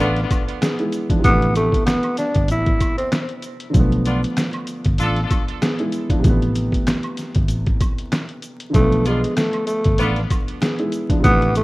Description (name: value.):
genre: hip hop, boom-bap hip-hop.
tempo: 96 BPM.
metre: 4/4.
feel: swing 54% on 16ths.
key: unclear.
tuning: A4 = 440 Hz.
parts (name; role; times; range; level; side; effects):
growling tenor saxophone; melody; 0.0-3.1, 8.7-11.6 s; G#3 to E4; -21 LUFS; equal; high-pass filter, low-pass filter, ping-pong delay.
warm upright piano; accompaniment; 0.0-11.6 s; C3 to G#4; -24 LUFS; right 1 dB; cassette tape, high-pass filter, low-pass filter.
warm horn section; stabs; 0.0-0.2, 4.1-5.2, 9.1-10.2 s; B3 to A4; -26 LUFS; left 1 dB; high-pass filter, low-pass filter, ping-pong delay.
vintage muted fingered electric bass; bass; 0.0-11.6 s; G1 to B1; -20 LUFS; equal; none.
tube shaker and woodblock; percussion; 0.0-11.6 s; none; -38 LUFS; right 3 dB; none.
trip hop sampler-style drum kit; drums; 0.2-11.6 s; hi-hat, kick drum, rim click, snare drum; -20 LUFS; equal; none.
room: studio reverb.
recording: rough home demo mix, vinyl crackle.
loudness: -17 LUFS.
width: side -20 dB against mid.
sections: 0.0-11.6 A section.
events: none.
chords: 0.0 Bm7b5; 1.2 Amadd9; 3.7 Bm7b5; 6.2 Amadd9; 8.7 Bm7b5.